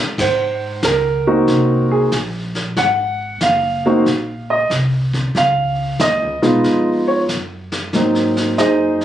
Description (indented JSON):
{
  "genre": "jazz piano trio",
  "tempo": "93 BPM",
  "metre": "4/4",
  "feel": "swing 66% on 8ths",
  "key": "Ab mixolydian",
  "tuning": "A4 = 440 Hz",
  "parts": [
    { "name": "warm upright piano", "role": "melody", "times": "0.2-9.0 s", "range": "Gb3 to Gb5", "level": "-15 LUFS", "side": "right 1 dB", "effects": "none" },
    { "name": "upright bass", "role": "bass", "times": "0.2-9.0 s", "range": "Gb1 to Ab2", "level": "-22 LUFS", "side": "equal", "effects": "none" },
    { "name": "vintage brush drum kit", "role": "drums", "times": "0.2-9.0 s", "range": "brushed snare drum, crash cymbal, hi-hat, kick drum, snare drum", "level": "-23 LUFS", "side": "left 1 dB", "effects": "none" }
  ],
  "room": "light reverb",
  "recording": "recorded on a phone in the room, club ambience, compression",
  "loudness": "-14 LUFS",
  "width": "side -11 dB against mid",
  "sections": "0.2-9.0 A section",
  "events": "drum fill 0.0",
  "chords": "0.2 Ab7; 5.3 Db7; 7.9 Ab7"
}